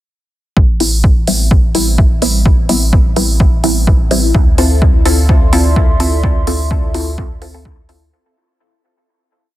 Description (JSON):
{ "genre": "dub techno", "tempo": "127 BPM", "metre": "4/4", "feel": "swing 53% on 16ths", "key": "A minor", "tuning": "A4 = 440 Hz", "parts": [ { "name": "soft dub sub bass", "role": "bass", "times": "0.6-8.1 s", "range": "A1 to D2", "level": "-16 LUFS", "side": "equal", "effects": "sidechain pumping" }, { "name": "electronic kick drum", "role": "drums", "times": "0.6-7.8 s", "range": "none", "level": "-12 LUFS", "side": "equal", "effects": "none" }, { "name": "filtered dub chord stab", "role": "stabs", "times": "0.8-8.1 s", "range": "G3 to A4", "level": "-17 LUFS", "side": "left 1 dB", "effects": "phaser, sidechain pumping, dub echo" }, { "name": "electronic hi-hat", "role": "drums", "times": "0.8-8.0 s", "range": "none", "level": "-19 LUFS", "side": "right 2 dB", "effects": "none" }, { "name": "dark analog pad", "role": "sustained chords", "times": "5.1-8.1 s", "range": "D5 to C6", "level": "-24 LUFS", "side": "right 1 dB", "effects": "chorus, phaser, sidechain pumping" } ], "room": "little or no reverb", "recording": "dense, heavily limited modern master", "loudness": "-10 LUFS", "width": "side -15 dB against mid", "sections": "0.6-8.1 groove", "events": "filter sweep on synth stab 0.6-8.1; fade-out 5.6-8.1", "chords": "0.6 Am9; 4.3 Dm9", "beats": "| 0.57 1.04 1.51 1.98 | 2.46 2.93 3.40 3.87 | 4.35 4.82 5.29 5.76 | 6.24 6.71 7.18 7.65" }